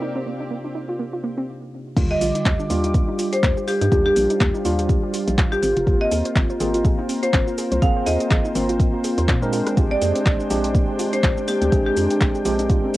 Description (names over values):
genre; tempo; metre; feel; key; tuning
deep house; 123 BPM; 4/4; swing 57% on 16ths; unclear; A4 = 444 Hz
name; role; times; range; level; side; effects
warm analog pad; sustained chords; 0.0-13.0 s; Ab3 to D6; -31 LUFS; left 1 dB; lush chorus, sidechain pumping, cassette tape
soft round pluck; arpeggios; 0.0-13.0 s; Bb3 to C5; -30 LUFS; right 3 dB; chorus, sidechain pumping, cassette tape, analog delay
tine electric piano; stabs; 0.0-13.0 s; C3 to Bb4; -25 LUFS; equal; medium stereo tremolo, sidechain pumping, low-pass filter, cassette tape, analog delay
clear symphonic string section; texture; 0.0-1.5 s; C4 to G4; -37 LUFS; equal; sidechain pumping, cassette tape
hollow knocking FM bass; bass; 2.0-12.8 s; F1 to Bb2; -25 LUFS; equal; tube saturation, sidechain pumping
deep house drum kit; drums; 2.0-13.0 s; crash cymbal, handclaps, hi-hat, rim click, shaker; -28 LUFS; equal; low-pass filter on hats, cassette tape, low-pass filter on cymbals, low-pass filter on perc, low-pass filter on snare
electronic kick drum; drums; 2.0-12.8 s; none; -19 LUFS; equal; cassette tape
marimba with hard mallets; melody; 2.1-12.0 s; G4 to F5; -23 LUFS; equal; cassette tape, analog delay
room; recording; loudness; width
light reverb; home recording on cassette; -18 LUFS; side -16 dB against mid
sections
0.0-2.0 A section; 2.0-13.0 B section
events
break 1.5-2.0; drop 2.0-13.0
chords
0.0 Cm11; 2.0 Ebmaj9; 5.6 Ab6; 9.5 Bb13